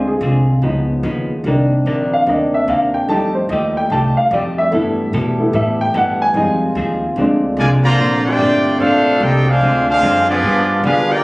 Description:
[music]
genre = jazz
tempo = 147 BPM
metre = 4/4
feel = swing 64% on 8ths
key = Bb major from 8.0 s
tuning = A4 = 439 Hz
[part]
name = vintage hollow-body jazz guitar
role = accompaniment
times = 0.0-11.1 s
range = Bb2 to C5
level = -22 LUFS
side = left 1 dB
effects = none
[part]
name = warm baby grand piano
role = accompaniment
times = 0.0-8.0 s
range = Eb3 to A5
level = -17 LUFS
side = equal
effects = none
[part]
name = mellow trombone section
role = sustained chords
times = 0.0-11.2 s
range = C3 to G4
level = -23 LUFS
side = equal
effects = none
[part]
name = upright bass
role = bass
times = 0.0-11.2 s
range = G1 to D3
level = -19 LUFS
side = equal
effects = none
[part]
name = clear trumpet section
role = melody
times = 7.6-11.2 s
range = Cb4 to Bb5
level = -15 LUFS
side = equal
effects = none
[part]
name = bright trombone section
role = second line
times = 7.6-11.2 s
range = D3 to G4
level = -20 LUFS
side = equal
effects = none
[sound]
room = moderate large studio reverb, RT60 0.9 s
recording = recorded on a phone in the room, club reverb, compression, nothing above 11.0 kHz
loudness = -13 LUFS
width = side -22 dB against mid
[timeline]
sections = 0.0-8.0 A section; 8.0-11.2 B section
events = grand piano solo 0.0-8.0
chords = 0.0 Dm7b5; 0.6 Db9; 1.5 Cm9; 3.1 F9; 4.7 G69; 6.4 Fm7; 7.2 Bb7; 8.0 Bbmaj9; 9.6 Dm7b5; 10.4 G7b9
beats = 0.23 0.63 1.04 | 1.45 1.86 2.27 2.68 | 3.09 3.50 3.91 4.32 | 4.72 5.13 5.54 5.95 | 6.36 6.76 7.17 7.58 | 7.99 8.39 8.80 9.21 | 9.61 10.02 10.43 10.83

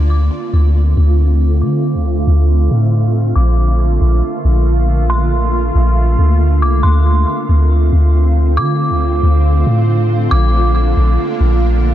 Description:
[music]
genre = hip hop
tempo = 138 BPM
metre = 4/4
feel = half-time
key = D minor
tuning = A4 = 438 Hz
[part]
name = dark detuned synth bell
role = melody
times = 0.0-10.7 s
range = C6 to D6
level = -23 LUFS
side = left 1 dB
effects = chorus, low-pass filter, digital delay
[part]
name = shimmering ambient pad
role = sustained chords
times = 0.0-11.9 s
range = D3 to F4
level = -18 LUFS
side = right 2 dB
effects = chorus, built-in reverb, low-pass filter
[part]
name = soft 808-style bass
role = bass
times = 0.0-11.9 s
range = Bb1 to D3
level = -12 LUFS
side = equal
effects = none
[sound]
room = digital ambience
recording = dense, heavily limited modern master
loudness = -11 LUFS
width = side -12 dB against mid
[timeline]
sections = 0.0-11.9 A section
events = filter sweep 0.0-11.9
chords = 0.0 Dm7; 3.4 Bbmaj7; 6.8 Dm7; 10.3 Bbmaj7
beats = 0.31 0.75 1.18 | 1.62 2.05 2.49 2.92 | 3.36 3.79 4.23 4.66 | 5.10 5.53 5.96 6.40 | 6.83 7.27 7.70 8.14 | 8.57 9.01 9.44 9.88 | 10.31 10.75 11.18 11.62

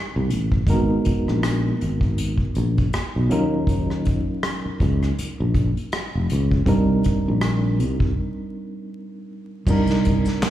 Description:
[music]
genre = R&B, neo-soul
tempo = 80 BPM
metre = 4/4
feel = swing 57% on 16ths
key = unclear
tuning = A4 = 439 Hz
[part]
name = bright reed electric piano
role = accompaniment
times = 0.0-10.5 s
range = Gb3 to Bb4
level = -25 LUFS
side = right 2 dB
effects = fast tremolo, slapback echo
[part]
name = sustaining fretless electric bass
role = bass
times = 0.2-10.3 s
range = F1 to Eb2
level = -21 LUFS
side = left 1 dB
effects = none
[part]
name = unplugged drum kit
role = drums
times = 0.3-10.5 s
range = crash cymbal, handclaps, hi-hat, kick drum, rim click, snare drum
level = -24 LUFS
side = equal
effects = none
[part]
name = maracas and finger snaps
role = percussion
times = 9.7-10.5 s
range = none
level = -38 LUFS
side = left 2 dB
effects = none
[sound]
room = light reverb, small room ambience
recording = live gig heard through the venue's PA, club reverb, vinyl crackle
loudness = -19 LUFS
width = side -12 dB against mid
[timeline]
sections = 0.0-9.7 A section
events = break 8.2-9.7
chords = 0.0 Cm9; 0.7 Abm9; 3.3 Ebm9; 6.7 Cm9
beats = | 0.67 1.42 2.17 2.92 | 3.67 4.42 5.17 5.92 | 6.67 7.42 8.17 8.92 | 9.67 10.42

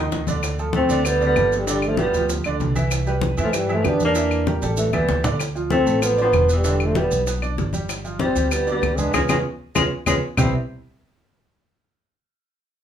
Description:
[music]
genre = Afro-Cuban jazz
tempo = 193 BPM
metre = 4/4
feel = straight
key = C major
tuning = A4 = 440 Hz
[part]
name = warm upright piano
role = accompaniment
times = 0.0-10.5 s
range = C3 to E5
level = -26 LUFS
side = right 3 dB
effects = none
[part]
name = upright bass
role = bass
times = 0.0-10.5 s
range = E1 to G2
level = -24 LUFS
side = equal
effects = none
[part]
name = bongos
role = percussion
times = 0.1-10.5 s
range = none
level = -31 LUFS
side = left 6 dB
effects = none
[part]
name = congas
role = percussion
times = 0.1-10.4 s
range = none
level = -27 LUFS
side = left 2 dB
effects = none
[part]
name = maracas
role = percussion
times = 0.1-10.5 s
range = none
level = -34 LUFS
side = right 5 dB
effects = none
[part]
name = claves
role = percussion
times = 0.4-10.4 s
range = none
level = -30 LUFS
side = left 5 dB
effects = none
[part]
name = trombone with bucket mute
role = melody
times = 0.8-10.5 s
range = G3 to E4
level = -21 LUFS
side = right 1 dB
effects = none
[part]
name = breathy tenor saxophone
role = second line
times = 0.8-10.5 s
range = D3 to C4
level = -26 LUFS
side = left 3 dB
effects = none
[sound]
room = light reverb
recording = small room ambience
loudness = -18 LUFS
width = side -9 dB against mid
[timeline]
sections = 0.0-5.4 A section; 5.4-10.4 B section; 10.4-11.6 C section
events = drum fill 0.0-0.4, 4.8-5.4, 9.4-10.4; band accent 9.1-10.4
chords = 0.4 Dm7; 1.7 G7; 2.9 Cmaj7; 4.2 Em7b5; 4.8 A7; 5.4 Dm7; 6.6 Em7; 7.9 G5; 9.1 Db7; 10.4 Cmaj7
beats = 0.12 | 0.43 0.74 1.05 1.36 | 1.67 1.98 2.29 2.60 | 2.91 3.22 3.53 3.84 | 4.16 4.46 4.78 5.09 | 5.40 5.71 6.02 6.33 | 6.64 6.95 7.26 7.58 | 7.89 8.20 8.51 8.82 | 9.13 9.45 9.76 10.07 | 10.38

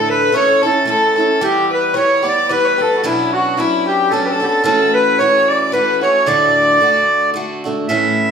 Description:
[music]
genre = celtic folk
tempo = 111 BPM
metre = 3/4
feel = swing 54% on 8ths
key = D major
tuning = A4 = 440 Hz
[part]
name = accordion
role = melody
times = 0.0-8.3 s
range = E4 to E5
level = -14 LUFS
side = right 1 dB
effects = none
[part]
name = rich fiddle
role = second line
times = 0.0-7.3 s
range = E4 to D5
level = -18 LUFS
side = left 5 dB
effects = none
[part]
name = picked steel-string acoustic guitar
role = accompaniment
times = 0.0-8.3 s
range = D2 to A4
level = -20 LUFS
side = right 2 dB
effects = none
[sound]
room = wet large studio reverb, RT60 0.8 s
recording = band playing live in one room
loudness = -12 LUFS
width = side -7 dB against mid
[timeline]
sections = 0.0-7.9 A section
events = none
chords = 0.3 A; 1.4 Em; 3.0 Bmadd9; 4.6 A6; 6.3 D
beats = 0.34 0.88 | 1.42 1.95 2.49 | 3.03 3.57 4.11 | 4.65 5.19 5.73 | 6.26 6.80 7.34 | 7.88

